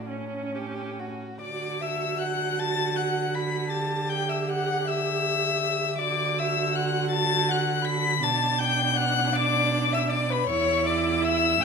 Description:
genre	classical, slow romantic movement for string quartet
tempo	53 BPM (dotted quarters)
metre	6/8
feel	rubato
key	D major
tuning	A4 = 442 Hz
part	warm violin	melody	0.0-11.6 s	B5 to B6	-26 LUFS	left 9 dB	none
part	warm violin	second line	0.0-11.6 s	C#4 to B5	-30 LUFS	left 1 dB	none
part	warm viola	accompaniment	0.0-11.6 s	C#4 to G4	-30 LUFS	right 4 dB	none
part	warm cello	bass	0.0-11.6 s	E2 to D3	-30 LUFS	right 4 dB	none
room	moderate recital hall reverb, RT60 1.3 s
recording	minimal, uncompressed stereo recording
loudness	-23 LUFS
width	side -5 dB against mid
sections	0.0-1.4 A section; 1.4-11.6 B section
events	none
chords	0.1 A; 1.4 D; 3.7 Em11/D; 6.0 D; 8.2 Bm; 10.5 C#m/E

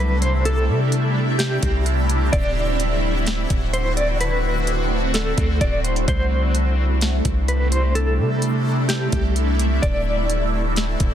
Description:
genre	hip hop, atmospheric cloud-rap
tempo	128 BPM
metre	4/4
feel	half-time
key	C lydian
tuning	A4 = 440 Hz
part	mellow electric guitar	melody	0.0-11.1 s	G4 to D5	-26 LUFS	equal	tremolo, digital delay
part	shimmering ambient pad	sustained chords	0.0-11.1 s	C3 to F#4	-24 LUFS	right 1 dB	chorus, built-in reverb, phaser, sidechain pumping
part	long sustained 808-style bass	bass	0.0-11.1 s	D1 to C3	-21 LUFS	equal	none
part	backwards swelling texture	texture	0.0-11.1 s	C4 to E5	-33 LUFS	equal	built-in reverb
part	trap drum kit	drums	0.2-11.1 s	hi-hat, kick drum, snare drum	-23 LUFS	equal	overdrive
room	little or no reverb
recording	dense, heavily limited modern master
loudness	-18 LUFS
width	side -10 dB against mid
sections	0.0-11.1 A section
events	none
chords	0.0 C6; 2.3 D7; 6.1 C6; 9.8 D7

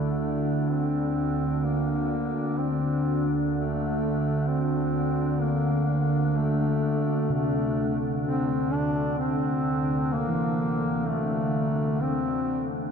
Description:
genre	dark ambient drone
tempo	64 BPM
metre	4/4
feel	straight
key	unclear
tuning	A4 = 440 Hz
part	mellow duduk	melody	0.0-12.7 s	A3 to D4	-29 LUFS	left 1 dB	diffuse ambient delay
part	organ-like drone	drone	0.0-12.9 s	D2 to D3	-26 LUFS	equal	ensemble chorus, built-in reverb
part	gamelan-type bossed gongs	arpeggios	7.3-12.9 s	C3 to E3	-31 LUFS	equal	diffuse ambient delay
room	wet huge ambient reverb, RT60 8.2 s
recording	dark, warm production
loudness	-24 LUFS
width	side -6 dB against mid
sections	0.0-12.9 A section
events	fade-in on kettle gongs 0.0-12.9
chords	0.0 Dsus2

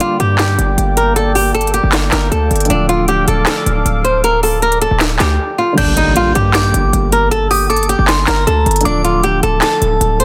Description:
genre	hip hop, trap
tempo	156 BPM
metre	4/4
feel	half-time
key	G minor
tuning	A4 = 439 Hz
part	flamenco guitar	melody	0.0-10.2 s	D4 to C5	-18 LUFS	equal	none
part	dark grand piano	accompaniment	0.0-10.2 s	D3 to D5	-25 LUFS	equal	none
part	sweeping resonant pad	sustained chords	0.0-5.7 s	Bb3 to D6	-26 LUFS	equal	chorus, phaser
part	trap drum kit	drums	0.0-10.2 s	crash cymbal, handclaps, hi-hat, snare drum	-20 LUFS	equal	overdrive
part	hard-hitting 808-style bass	bass	0.2-10.2 s	D1 to G2	-18 LUFS	equal	none
part	glassy synth bell	second line	5.8-10.0 s	A5 to G6	-21 LUFS	equal	chorus, digital delay
part	impact	sound effects	5.8-7.3 s	none	-24 LUFS	equal	none
room	little or no reverb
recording	dense, heavily limited modern master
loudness	-13 LUFS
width	mono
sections	0.0-5.8 A section; 5.8-10.2 B section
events	break 5.4-5.8; impact 5.8-7.3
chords	0.0 Gm; 2.7 Dm; 5.8 Gm; 8.9 Dm

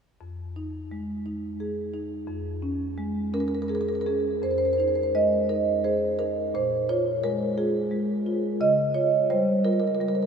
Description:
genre	classical, contemporary piece for solo marimba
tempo	57 BPM (dotted quarters)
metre	6/8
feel	straight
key	F minor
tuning	A4 = 440 Hz
part	marimba with medium mallets	solo	0.2-10.3 s	F2 to Eb5	-23 LUFS	right 1 dB	none
room	wet cathedral reverb, RT60 6.3 s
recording	small room ambience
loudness	-23 LUFS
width	side -6 dB against mid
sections	0.2-4.4 A section; 4.4-10.3 B section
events	none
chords	0.2 Fm7; 2.3 Bbm7/F; 4.4 Fm7; 6.5 Bb5; 8.6 Db

